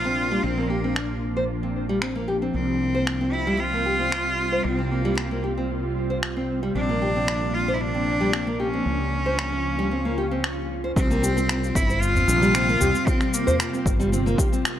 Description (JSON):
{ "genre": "organic downtempo", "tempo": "114 BPM", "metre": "4/4", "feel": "straight", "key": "unclear", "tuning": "A4 = 438 Hz", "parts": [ { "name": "bright cello", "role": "melody", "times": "0.0-13.9 s", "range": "Bb3 to F4", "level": "-26 LUFS", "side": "equal", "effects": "analog delay" }, { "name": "ethereal airy pad", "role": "sustained chords", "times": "0.0-14.8 s", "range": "C3 to F4", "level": "-29 LUFS", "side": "equal", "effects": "ensemble chorus, built-in reverb, sidechain pumping" }, { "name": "mellow fretless electric bass", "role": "bass", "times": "0.0-14.3 s", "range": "G1 to Db2", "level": "-28 LUFS", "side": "equal", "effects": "sidechain pumping" }, { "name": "nylon-string guitar", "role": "arpeggios", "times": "0.1-14.6 s", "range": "G3 to C5", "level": "-27 LUFS", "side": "equal", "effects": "low-pass filter, tape echo" }, { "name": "electronic finger snaps and cabasa", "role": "drums", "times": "1.0-14.8 s", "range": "none", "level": "-28 LUFS", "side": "equal", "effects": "none" }, { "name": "electronic kick drum", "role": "drums", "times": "11.0-14.5 s", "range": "none", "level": "-23 LUFS", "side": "equal", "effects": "none" }, { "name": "udu", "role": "percussion", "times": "12.2-13.6 s", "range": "none", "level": "-27 LUFS", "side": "left 1 dB", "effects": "none" } ], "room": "light reverb", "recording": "dry, gritty hardware recording", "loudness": "-21 LUFS", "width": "side -11 dB against mid", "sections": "0.0-11.0 A section; 11.0-14.8 B section", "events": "none", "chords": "0.0 Bb; 2.5 Csus4; 6.8 Bb; 8.9 Db; 11.0 Csus4" }